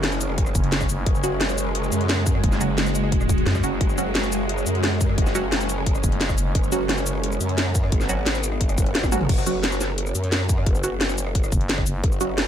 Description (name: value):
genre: dark technical drum and bass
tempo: 175 BPM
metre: 4/4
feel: straight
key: unclear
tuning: A4 = 441 Hz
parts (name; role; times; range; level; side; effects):
- swarming drone; sustained chords; 0.0-9.3 s; C#3 to F#4; -28 LUFS; right 1 dB; built-in reverb, phaser, sidechain pumping
- growl bass; bass; 0.0-12.5 s; F#1 to F#2; -25 LUFS; equal; chorus, sidechain pumping
- drum and bass drum kit; drums; 0.0-12.4 s; crash cymbal, hi-hat, rim click, shaker, snare drum, toms; -25 LUFS; left 1 dB; none
- electronic kick drum; drums; 0.4-12.1 s; none; -22 LUFS; equal; none
- growling FM bass; bass; 0.6-3.8, 6.0-6.5, 11.5-12.0 s; F#1 to F#2; -24 LUFS; equal; none
- filtered dub chord stab; stabs; 1.2-12.5 s; F#3 to F#4; -29 LUFS; right 3 dB; phaser, ping-pong delay
room: digital ambience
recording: none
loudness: -20 LUFS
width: side -9 dB against mid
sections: 0.0-9.3 A section; 9.3-12.5 A section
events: drop 0.0-9.3, 9.3-12.5; drum fill 9.0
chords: 0.0 F#5